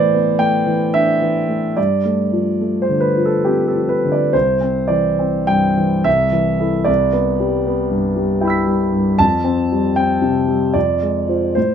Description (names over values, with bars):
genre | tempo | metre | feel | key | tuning
classical, impressionist solo piano | 68-80 BPM | 3/4 | rubato | unclear | A4 = 440 Hz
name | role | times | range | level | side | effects
warm concert grand piano | solo | 0.0-11.7 s | C2 to B6 | -14 LUFS | equal | none
room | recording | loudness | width
moderate studio reverb, RT60 0.5 s | none | -14 LUFS | side -8 dB against mid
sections
0.0-11.7 A section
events
none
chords
0.0 Asus24; 1.8 G9sus4; 4.3 C; 6.1 Am/C; 6.9 Em7/C; 9.2 Fadd9; 10.8 Fm6